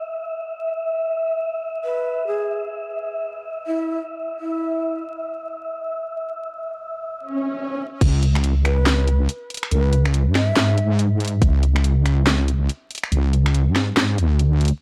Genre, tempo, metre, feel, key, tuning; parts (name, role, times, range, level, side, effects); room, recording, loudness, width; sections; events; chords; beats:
deep dubstep; 141 BPM; 4/4; swing 60% on 16ths, half-time; C# phrygian; A4 = 436 Hz
wind-like tuned noise texture; texture; 0.0-7.2 s; E5; -29 LUFS; equal; built-in reverb
breathy shakuhachi; melody; 1.8-5.0, 8.6-11.0 s; E4 to E5; -30 LUFS; equal; dub echo
swell; sound effects; 7.3-8.0 s; -28 LUFS; equal
wobble bass; bass; 8.0-14.7 s; C#2 to G#2; -19 LUFS; equal; chorus
electronic kick drum; drums; 8.0-8.1, 11.4-11.5 s; -19 LUFS; equal; overdrive
garage drum kit; drums; 8.0-14.8 s; crash cymbal, finger snaps, handclaps, hi-hat, snare drum; -24 LUFS; equal; overdrive
digital ambience; dry, gritty hardware recording, vinyl crackle; -21 LUFS; mono
0.0-8.0 A section; 8.0-14.8 B section
swell 7.3-8.0; drop 8.0-14.8
0.0 N.C.; 8.0 C#5
0.35 0.78 | 1.20 1.63 2.06 2.48 | 2.91 3.33 3.76 4.18 | 4.61 5.03 5.46 5.88 | 6.31 6.74 7.16 7.59 | 8.01 8.44 8.86 9.29 | 9.71 10.14 10.56 10.99 | 11.42 11.84 12.27 12.69 | 13.12 13.54 13.97 14.39